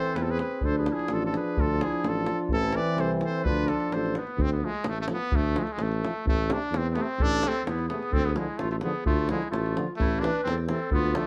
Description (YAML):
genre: balkan folk, Balkan brass band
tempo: 128 BPM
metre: 2/4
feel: straight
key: D dorian sharp4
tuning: A4 = 440 Hz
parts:
  - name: clear trumpet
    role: melody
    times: 0.0-11.3 s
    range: G#3 to D5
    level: -33 LUFS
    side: equal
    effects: slapback echo
  - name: warm clarinet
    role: second line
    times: 0.0-4.4, 7.2-11.3 s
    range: E4 to B4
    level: -36 LUFS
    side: equal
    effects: none
  - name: bright trombone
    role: accompaniment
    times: 0.0-11.2 s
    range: E3 to D4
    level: -36 LUFS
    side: equal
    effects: none
  - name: warm euphonium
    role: accompaniment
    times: 0.0-11.2 s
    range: C3 to F3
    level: -36 LUFS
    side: equal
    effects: none
  - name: mellow tuba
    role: bass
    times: 0.1-11.2 s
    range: A1 to E2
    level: -32 LUFS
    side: equal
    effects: none
  - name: davul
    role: percussion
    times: 0.1-11.3 s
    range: none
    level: -33 LUFS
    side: equal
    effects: none
room: light reverb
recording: dark, warm production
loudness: -27 LUFS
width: mono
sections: 0.0-4.4 A section; 4.4-11.3 A section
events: none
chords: 0.0 Am; 0.6 Dm; 2.5 Am; 3.5 Dm; 6.3 Am; 8.1 Dm; 10.0 Am